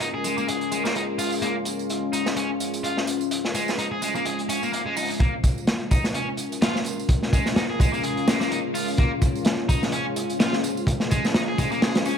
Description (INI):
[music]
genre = breakbeat, breaks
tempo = 127 BPM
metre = 4/4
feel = swing 56% on 16ths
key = unclear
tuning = A4 = 440 Hz
[part]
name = deep dark ambient pad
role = sustained chords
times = 0.0-12.2 s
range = Ab3 to C5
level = -28 LUFS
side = left 2 dB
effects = chorus, built-in reverb, sidechain pumping
[part]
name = overdriven electric guitar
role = riff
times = 0.0-12.2 s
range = Ab3 to Ab4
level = -28 LUFS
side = equal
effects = low-pass filter, digital delay
[part]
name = crunchy breakbeat drum kit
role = drums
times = 0.0-12.1 s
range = hi-hat, kick drum, snare drum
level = -24 LUFS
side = equal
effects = high-pass filter on kick, high-pass filter on hats, high-pass filter on snare, high-pass filter on room
[part]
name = tambourine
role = drums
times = 0.0-12.2 s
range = none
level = -38 LUFS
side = right 9 dB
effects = none
[sound]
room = light reverb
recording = dark, warm production, high-pass filter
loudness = -21 LUFS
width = side -7 dB against mid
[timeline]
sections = 0.0-5.2 A section; 5.2-12.2 B section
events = build-up 5.2-12.2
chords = 0.0 Bbm7